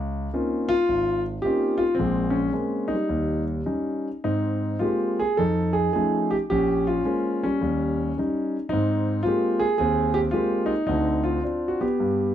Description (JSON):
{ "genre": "solo jazz", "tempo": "108 BPM", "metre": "4/4", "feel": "swing 67% on 8ths, rubato", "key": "Ab major", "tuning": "A4 = 440 Hz", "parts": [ { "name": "warm concert grand piano", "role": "solo", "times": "0.0-12.3 s", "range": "Ab1 to C5", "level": "-22 LUFS", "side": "equal", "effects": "none" } ], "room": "light reverb", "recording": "dark, warm production", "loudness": "-22 LUFS", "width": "side -10 dB against mid", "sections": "0.0-12.3 A section", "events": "none", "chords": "0.0 Dbmaj13; 2.0 Bbm9; 3.1 Eb7; 4.3 Abmaj9; 5.4 Faug7; 6.5 Bbm9; 7.6 Eb7; 8.7 Abmaj9; 10.9 Dm7" }